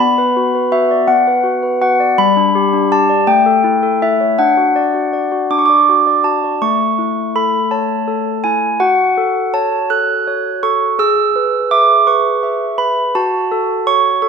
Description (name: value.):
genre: classical, lullaby for handbells.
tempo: 55 BPM (dotted quarters).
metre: 6/8.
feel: straight.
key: D major, A major from 6.6 s.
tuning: A4 = 441 Hz.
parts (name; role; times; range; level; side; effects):
handbells; solo; 0.0-14.3 s; G3 to F#6; -12 LUFS; equal; none.
room: moderate concert hall reverb, RT60 2.0 s.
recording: minimal, uncompressed stereo recording.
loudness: -12 LUFS.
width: side -6 dB against mid.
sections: 0.0-6.6 A section; 6.6-14.3 B section.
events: none.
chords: 0.0 Bm; 2.2 G; 3.3 A7; 4.4 D; 6.6 A; 8.8 F#m; 11.0 E/G#; 13.1 F#m.